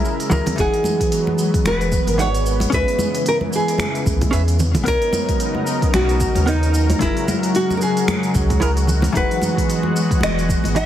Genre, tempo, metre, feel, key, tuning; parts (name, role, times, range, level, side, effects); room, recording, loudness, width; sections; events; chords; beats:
sunset chillout; 112 BPM; 4/4; swing 58% on 16ths; A4 = 443 Hz
nylon-string guitar; melody; 0.0-10.9 s; D#4 to E5; -22 LUFS; equal; ping-pong delay
hollow-body jazz guitar; accompaniment; 0.0-10.8 s; E3 to F#5; -24 LUFS; moving between left 5 dB and right 5 dB; auto-pan, ping-pong delay
lush unison pad; sustained chords; 0.0-10.9 s; C#3 to A#4; -24 LUFS; left 1 dB; chorus
smooth R&B drum kit; drums; 0.1-10.9 s; finger snaps, hi-hat, shaker; -28 LUFS; right 1 dB
warm sub bass; bass; 0.3-10.9 s; E1 to E2; -20 LUFS; equal
congas; percussion; 0.3-10.7 s; -26 LUFS; equal
electronic kick drum; drums; 0.6-10.6 s; -22 LUFS; equal
light reverb; heavily compressed radio sound, multiband compression; -16 LUFS; side -11 dB against mid
0.6-10.9 A section
0.0 F#9; 0.6 Emaj9; 2.7 C#m7; 4.9 Bmaj9; 7.0 F#9; 9.2 Emaj9
0.05 | 0.58 1.12 1.65 2.19 | 2.73 3.26 3.80 4.33 | 4.87 5.40 5.94 6.47 | 7.01 7.55 8.08 8.62 | 9.15 9.69 10.22 10.76